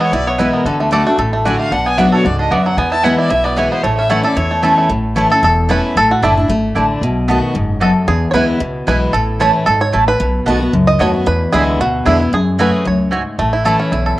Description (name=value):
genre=bluegrass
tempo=226 BPM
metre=4/4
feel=swing 54% on 8ths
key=A major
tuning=A4 = 440 Hz
part: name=bluegrass banjo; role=melody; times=0.0-14.2 s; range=F#3 to D#5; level=-16 LUFS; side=right 1 dB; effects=none
part: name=rich fiddle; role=melody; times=0.0-4.8 s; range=A4 to A5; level=-19 LUFS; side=left 1 dB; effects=none
part: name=picked steel-string acoustic guitar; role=accompaniment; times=0.0-14.2 s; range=E2 to G#4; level=-16 LUFS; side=left 1 dB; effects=none
part: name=upright bass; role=bass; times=0.1-14.1 s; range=E1 to F#2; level=-20 LUFS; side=equal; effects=none
part: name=mandolin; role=stabs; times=0.4-13.8 s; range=A3 to B5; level=-19 LUFS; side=right 2 dB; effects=none
room=moderate spring reverb, RT60 1.5 s, small room ambience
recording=home recording on cassette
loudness=-12 LUFS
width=side -16 dB against mid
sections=0.0-4.9 A section; 4.9-14.2 B section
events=five-string banjo solo 4.9-14.2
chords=0.0 E; 0.7 D; 1.7 Bm; 2.8 E; 3.8 A; 6.0 Dsus2; 7.0 B7; 8.1 E; 9.1 A; 10.2 B7; 11.3 E7; 12.3 F#madd9; 13.4 A